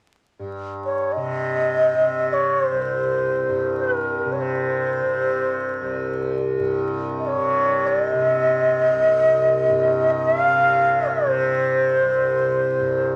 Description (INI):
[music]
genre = indian classical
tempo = free time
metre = none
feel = none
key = C raga bhairavi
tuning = A4 = 440 Hz
[part]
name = tanpura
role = drone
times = 0.4-13.2 s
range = C2 to C3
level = -27 LUFS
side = equal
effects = none
[part]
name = bansuri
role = melody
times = 0.9-13.2 s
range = Bb4+29c to F5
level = -21 LUFS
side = equal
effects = none
[sound]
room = wet small room reverb, RT60 0.5 s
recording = vinyl crackle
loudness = -21 LUFS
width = mono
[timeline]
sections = 0.4-13.2 A section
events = none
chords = none